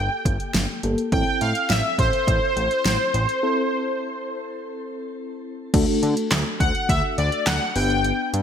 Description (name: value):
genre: synth-pop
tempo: 104 BPM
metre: 4/4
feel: straight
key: unclear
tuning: A4 = 443 Hz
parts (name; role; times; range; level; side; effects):
- analog synth brass; melody; 0.0-8.3 s; C5 to G5; -24 LUFS; equal; chorus, shimmer reverb, ping-pong delay
- mellow FM electric piano; accompaniment; 0.0-8.4 s; A3 to B4; -27 LUFS; left 2 dB; chorus, tremolo, shimmer reverb
- fat analog bass; bass; 0.0-8.4 s; G1 to D3; -24 LUFS; equal; none
- deep house drum kit; drums; 0.3-8.4 s; crash cymbal, handclaps, hi-hat, kick drum, snare drum; -24 LUFS; equal; overdrive, gated reverb
room: moderate lush hall reverb, RT60 1.7 s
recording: bright 1980s-style digital production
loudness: -19 LUFS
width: side -8 dB against mid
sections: 0.0-5.7 A section; 5.7-8.4 B section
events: break 3.4-5.7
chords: 0.0 Gmadd9; 1.1 Am; 5.7 D; 7.8 G